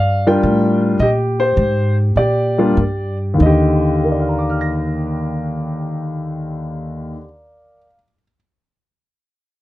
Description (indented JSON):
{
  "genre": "jazz piano trio",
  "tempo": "94-109 BPM",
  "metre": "4/4",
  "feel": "swing 68% on 8ths",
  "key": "Eb major",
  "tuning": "A4 = 440 Hz",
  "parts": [
    { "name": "dark concert grand piano", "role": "melody", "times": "0.0-8.4 s", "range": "Eb2 to Bb6", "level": "-16 LUFS", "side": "left 1 dB", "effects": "none" },
    { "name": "upright bass", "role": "bass", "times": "0.0-7.1 s", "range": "Eb2 to Bb2", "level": "-19 LUFS", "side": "equal", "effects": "none" }
  ],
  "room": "little or no reverb",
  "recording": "dry, close 1970s-style studio recording",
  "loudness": "-15 LUFS",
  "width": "side -16 dB against mid",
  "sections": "0.0-3.4 A section; 3.4-8.5 B section",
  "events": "slowing down 0.0-3.4",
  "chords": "0.0 Ebmaj7 (rootless); 3.4 Ebmaj7",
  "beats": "0.44 | 1.01 1.58 2.17 2.78 | 3.40 4.04 4.67 5.31 | 5.95 6.58 7.22 7.86"
}